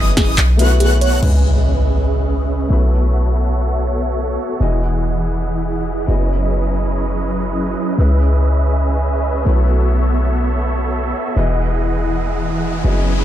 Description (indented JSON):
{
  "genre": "future bass",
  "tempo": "free time",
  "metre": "none",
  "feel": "none",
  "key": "C# minor",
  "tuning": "A4 = 439 Hz",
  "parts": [
    { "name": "dark baby grand piano", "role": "accompaniment", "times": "0.0-13.2 s", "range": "G#3 to D#5", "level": "-27 LUFS", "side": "left 4 dB", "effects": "sidechain pumping, digital delay" },
    { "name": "airy dreamy lead", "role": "arpeggios", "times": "0.0-1.2 s", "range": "D#6 to F#6", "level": "-28 LUFS", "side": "left 2 dB", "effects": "chorus, sidechain pumping" },
    { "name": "supersaw chords", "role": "riff", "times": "0.0-13.2 s", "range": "E3 to F#5", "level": "-21 LUFS", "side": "right 1 dB", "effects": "phaser, sidechain pumping, low-pass filter, digital delay" },
    { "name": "warm 808-style bass", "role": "bass", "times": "0.0-13.2 s", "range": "E1 to C#2", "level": "-16 LUFS", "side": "equal", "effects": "sidechain pumping" },
    { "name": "bell-like FM electric piano", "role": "melody", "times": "0.2-1.2 s", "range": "G#4 to C#5", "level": "-27 LUFS", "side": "right 2 dB", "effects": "none" },
    { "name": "dubstep drum kit", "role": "drums", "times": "0.2-1.3 s", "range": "crash cymbal, handclaps, hi-hat, snare drum", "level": "-21 LUFS", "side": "equal", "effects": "none" },
    { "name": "impact and riser", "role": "sound effects", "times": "1.2-2.9, 11.7-13.2 s", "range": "none", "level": "-26 LUFS", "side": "equal", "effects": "none" }
  ],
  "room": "little or no reverb",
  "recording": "none",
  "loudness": "-14 LUFS",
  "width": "side -12 dB against mid",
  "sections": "0.0-1.2 A section; 1.2-13.2 B section",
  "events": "drop 0.0-1.2; impact 1.2-2.9; riser 11.7-13.2",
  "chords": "0.4 B7sus4; 1.2 C#m9; 2.7 B9sus4; 4.6 Emaj9; 6.1 F#13sus4; 8.0 C#m9; 9.5 B9sus4; 11.4 Emaj9",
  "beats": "free time"
}